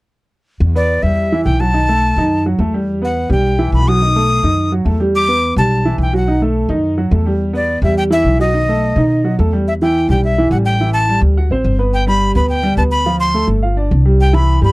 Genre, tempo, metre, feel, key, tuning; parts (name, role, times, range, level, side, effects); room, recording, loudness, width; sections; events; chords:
latin; 212 BPM; 4/4; straight; E minor; A4 = 440 Hz
upright bass; bass; 0.6-14.7 s; G1 to B2; -15 LUFS; equal
breathy bright jazz flute; melody; 0.8-14.7 s; D5 to D#6; -17 LUFS; left 1 dB
clear baby grand piano; accompaniment; 0.8-14.7 s; D#3 to F#5; -16 LUFS; right 1 dB
little or no reverb; dry, close 1970s-style studio recording; -12 LUFS; side -21 dB against mid
0.6-9.7 A section; 9.7-14.7 B section
0.6 Em7; 1.7 B7; 2.9 Em; 4.0 B7; 5.1 Em7; 6.3 B7; 7.4 Em7; 8.5 B7; 9.7 Em; 10.8 A5; 11.4 D7; 11.9 G; 13.1 Dm7; 13.6 G5; 14.2 Cmaj7